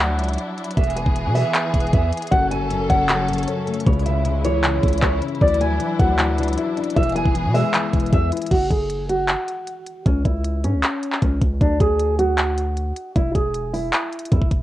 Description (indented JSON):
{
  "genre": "hip hop, trap",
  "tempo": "155 BPM",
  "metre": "4/4",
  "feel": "half-time",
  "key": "F# minor",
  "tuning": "A4 = 443 Hz",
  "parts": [
    { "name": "nylon-string guitar", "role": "melody", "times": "0.0-14.5 s", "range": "C#4 to G#5", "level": "-23 LUFS", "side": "right 1 dB", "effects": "low-pass filter, cassette tape, tape echo" },
    { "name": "clear symphonic string section", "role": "sustained chords", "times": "0.0-8.5 s", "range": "C#3 to A4", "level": "-28 LUFS", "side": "left 1 dB", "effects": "none" },
    { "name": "long sustained 808-style bass", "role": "bass", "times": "0.0-14.6 s", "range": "E1 to B2", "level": "-23 LUFS", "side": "equal", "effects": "none" },
    { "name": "trap drum kit", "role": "drums", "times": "0.0-14.6 s", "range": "crash cymbal, handclaps, hi-hat, kick drum", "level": "-20 LUFS", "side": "equal", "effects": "cassette tape" },
    { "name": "dark concert grand piano", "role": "accompaniment", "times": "2.3-8.5 s", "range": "F#2 to E5", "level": "-24 LUFS", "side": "left 6 dB", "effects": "low-pass filter" }
  ],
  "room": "little or no reverb",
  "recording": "home recording on cassette",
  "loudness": "-18 LUFS",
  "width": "side -14 dB against mid",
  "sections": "0.0-8.5 A section; 8.5-14.6 B section",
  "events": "filter sweep 8.5-14.6",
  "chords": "0.0 Dadd9; 0.8 E; 2.3 F#m; 3.9 C#m; 5.4 Dadd9; 7.0 E; 8.5 F#sus2; 10.1 C#m; 11.6 D; 13.2 E"
}